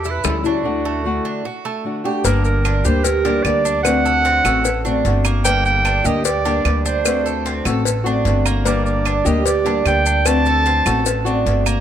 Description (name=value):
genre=latin, Cuban son and guajira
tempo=150 BPM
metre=4/4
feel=straight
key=G harmonic minor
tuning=A4 = 440 Hz
part: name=clear clarinet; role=melody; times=0.0-11.5 s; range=F#4 to A5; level=-21 LUFS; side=right 2 dB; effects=none
part: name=Cuban tres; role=arpeggios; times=0.0-11.8 s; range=A3 to A4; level=-22 LUFS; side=right 7 dB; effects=none
part: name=upright bass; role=bass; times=0.0-11.8 s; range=G1 to E2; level=-20 LUFS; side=equal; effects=none
part: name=bongos and cowbell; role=percussion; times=0.0-11.7 s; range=none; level=-26 LUFS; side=left 6 dB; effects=none
part: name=maracas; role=percussion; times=0.0-11.8 s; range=none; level=-26 LUFS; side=left 9 dB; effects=none
part: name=nylon-string guitar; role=accompaniment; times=0.2-11.8 s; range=D3 to G4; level=-22 LUFS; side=left 5 dB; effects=none
part: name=claves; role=percussion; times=0.2-11.8 s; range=none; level=-25 LUFS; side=right 12 dB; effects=none
room=light reverb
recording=none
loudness=-15 LUFS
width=side -10 dB against mid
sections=0.0-2.2 A section; 2.2-11.8 B section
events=break 0.6-2.2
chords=0.0 A7; 0.6 D; 2.2 Gm; 3.8 D7; 5.5 Gm; 7.1 D7; 8.7 Gm; 10.3 D7